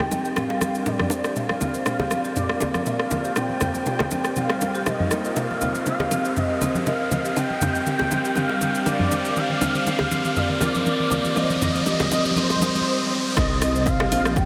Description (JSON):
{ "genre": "afro house", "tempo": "120 BPM", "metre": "4/4", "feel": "swing 54% on 16ths", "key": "C minor", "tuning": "A4 = 440 Hz", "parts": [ { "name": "expressive synth lead", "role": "melody", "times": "0.0-14.5 s", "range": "C5 to G5", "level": "-29 LUFS", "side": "equal", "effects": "ensemble chorus, delay" }, { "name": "ethereal airy pad", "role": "sustained chords", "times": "0.0-14.5 s", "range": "C3 to Eb5", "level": "-35 LUFS", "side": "equal", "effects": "none" }, { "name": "house drum kit", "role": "drums", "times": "0.0-14.5 s", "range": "hi-hat, rim click, shaker, toms", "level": "-30 LUFS", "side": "equal", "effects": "none" }, { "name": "congas", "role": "percussion", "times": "0.0-12.7 s", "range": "none", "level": "-34 LUFS", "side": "equal", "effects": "none" }, { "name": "riser and swell", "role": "sound effects", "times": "2.3-13.4 s", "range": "none", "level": "-32 LUFS", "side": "equal", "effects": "none" }, { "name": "marimba with medium mallets", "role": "arpeggios", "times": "0.1-14.4 s", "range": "G3 to C5", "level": "-30 LUFS", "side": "equal", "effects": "sidechain pumping, low-pass filter, delay" }, { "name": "bongos", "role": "percussion", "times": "0.1-14.5 s", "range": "none", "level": "-33 LUFS", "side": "equal", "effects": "none" }, { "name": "dark detuned saw bass", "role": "bass", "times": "13.4-14.5 s", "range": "Bb1 to C2", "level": "-27 LUFS", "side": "equal", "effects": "sidechain pumping" }, { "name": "electronic kick drum", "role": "drums", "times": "13.4-14.5 s", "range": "none", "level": "-27 LUFS", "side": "equal", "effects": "none" } ], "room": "wet huge ambient reverb, RT60 7.8 s", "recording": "dreamy mix soaked in reverb", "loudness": "-23 LUFS", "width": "mono", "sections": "0.0-13.4 A section; 13.4-14.5 B section", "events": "build-up 0.0-13.4; drum fill 0.0-12.9; filter sweep on ambient pad 0.0-13.4; riser 2.3-13.4; swell 12.4-13.4; drop 13.4-14.5", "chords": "0.0 Gm; 1.4 Bb; 3.4 Eb69; 5.4 Cm; 7.4 Gm; 9.4 Bb; 11.4 Ab; 13.4 Cm7" }